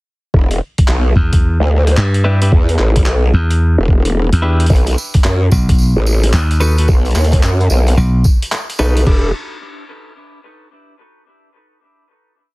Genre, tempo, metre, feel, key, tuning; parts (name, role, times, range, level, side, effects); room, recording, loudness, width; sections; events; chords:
glitch hop; 110 BPM; 4/4; swing 64% on 16ths; E minor; A4 = 439 Hz
growl bass; bass; 0.3-9.3 s; E1 to F#2; -12 LUFS; equal; chorus, tube saturation
electronic kick drum; drums; 0.3-9.2 s; -11 LUFS; equal; overdrive, studio reverb
boom bap sampler-style drum kit; drums; 0.5-9.2 s; crash cymbal, handclaps, hi-hat, rim click; -24 LUFS; equal; overdrive, studio reverb
slap bass; bass; 1.2-8.2 s; B1 to G2; -12 LUFS; equal; tube saturation
clean electric guitar; stabs; 2.2-9.3 s; D4 to B4; -23 LUFS; left 1 dB; vintage 12-bit sampler grit, sidechain pumping, dub echo
tambourine; percussion; 4.7-9.0 s; -28 LUFS; right 2 dB
little or no reverb; heavily compressed radio sound; -11 LUFS; side -23 dB against mid
0.3-9.1 drop; 9.1-11.2 final chord
drop 0.3-9.1
0.3 Em7; 4.7 B7; 9.1 Em7